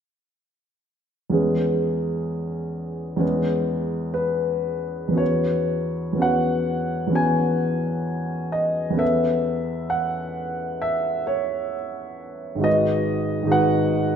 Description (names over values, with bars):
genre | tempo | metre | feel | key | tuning
classical, impressionist solo piano | 64 BPM | 4/4 | uneven beats, rubato | E major | A4 = 440 Hz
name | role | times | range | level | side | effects
warm baby grand piano | solo | 1.3-14.2 s | G#1 to G#5 | -21 LUFS | equal | none
room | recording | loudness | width
wet scoring stage reverb, RT60 1.7 s | minimal, uncompressed stereo recording | -21 LUFS | side -8 dB against mid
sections
1.4-5.2 A section; 5.2-14.2 B section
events
none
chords
1.4 E6; 5.2 E69; 9.0 Aadd9/E; 12.7 G#m7